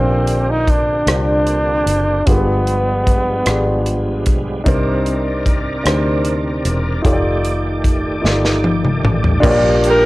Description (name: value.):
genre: slow gospel.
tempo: 50 BPM (dotted quarters).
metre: 6/8.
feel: straight.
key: Bb major.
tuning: A4 = 445 Hz.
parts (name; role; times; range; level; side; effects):
bright trombone; melody; 0.0-4.3 s; B3 to Eb4; -18 LUFS; right 1 dB; none.
warm concert grand piano; accompaniment; 0.0-10.1 s; G2 to D5; -19 LUFS; equal; cassette tape.
overdriven tonewheel organ; sustained chords; 0.0-10.1 s; C3 to D5; -24 LUFS; right 1 dB; slow rotary speaker, chorus vibrato, cassette tape.
fingered electric bass; bass; 0.0-10.1 s; E1 to D2; -20 LUFS; equal; none.
modern studio drum kit; drums; 0.3-10.0 s; crash cymbal, hi-hat, kick drum, rim click, snare drum, toms; -17 LUFS; equal; cassette tape.
clear saxophone section; melody; 9.9-10.1 s; D4 to Bb4; -11 LUFS; equal; none.
room: light reverb.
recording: home recording on cassette.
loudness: -14 LUFS.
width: side -19 dB against mid.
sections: 0.0-9.4 A section.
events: drum fill 8.2-9.4.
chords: 0.0 Bb69; 2.3 G7b9; 4.7 Cm9; 7.1 F13; 9.4 Bb6.